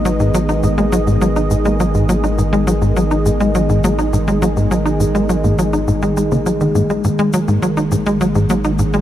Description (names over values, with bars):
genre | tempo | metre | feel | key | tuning
ambient, sequencer-driven space music | 103 BPM | 4/4 | straight | G# minor | A4 = 438 Hz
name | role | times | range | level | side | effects
sweeping resonant pad | sustained chords | 0.0-9.0 s | D#3 to D#5 | -18 LUFS | equal | chorus
warm sub bass | bass | 0.0-9.0 s | G#1 | -22 LUFS | equal | none
tight sequencer bass | riff | 0.1-9.0 s | G#2 to D#4 | -16 LUFS | equal | wide subtle chorus, analog delay
cabasa and congas | percussion | 0.1-9.0 s | none | -27 LUFS | left 3 dB | analog delay
room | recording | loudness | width
moderate huge ambient reverb, RT60 7.3 s | none | -13 LUFS | side -12 dB against mid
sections
0.0-9.0 A section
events
none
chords
0.0 G#m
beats
| 0.05 0.64 1.22 1.80 | 2.38 2.97 3.55 4.13 | 4.71 5.30 5.88 6.46 | 7.04 7.63 8.21 8.79